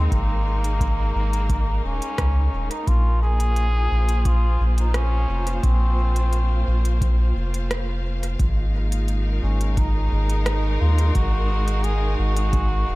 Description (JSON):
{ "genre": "ambient dub", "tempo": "87 BPM", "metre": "4/4", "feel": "straight", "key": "Bb minor", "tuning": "A4 = 438 Hz", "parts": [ { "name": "trombone with metal mute", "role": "melody", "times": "0.0-13.0 s", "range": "Bb3 to Ab4", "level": "-28 LUFS", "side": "equal", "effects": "dub echo" }, { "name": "clear studio string section", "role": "sustained chords", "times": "0.0-13.0 s", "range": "Ab3 to F5", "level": "-31 LUFS", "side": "equal", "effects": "none" }, { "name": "soft dub sub bass", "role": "bass", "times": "0.0-13.0 s", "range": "Eb1 to Eb2", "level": "-20 LUFS", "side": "equal", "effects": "none" }, { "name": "electronic kick drum", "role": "drums", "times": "0.1-12.7 s", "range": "none", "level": "-24 LUFS", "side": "equal", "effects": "overdrive" }, { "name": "organic electronic drum kit", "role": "drums", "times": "0.1-12.7 s", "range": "hi-hat, rim click", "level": "-32 LUFS", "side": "right 1 dB", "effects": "dub echo" } ], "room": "little or no reverb", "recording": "none", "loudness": "-19 LUFS", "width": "side -20 dB against mid", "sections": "0.0-2.9 A section; 2.9-13.0 B section", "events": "none", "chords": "0.0 Absus24; 2.9 Bbsus2; 8.4 Absus2" }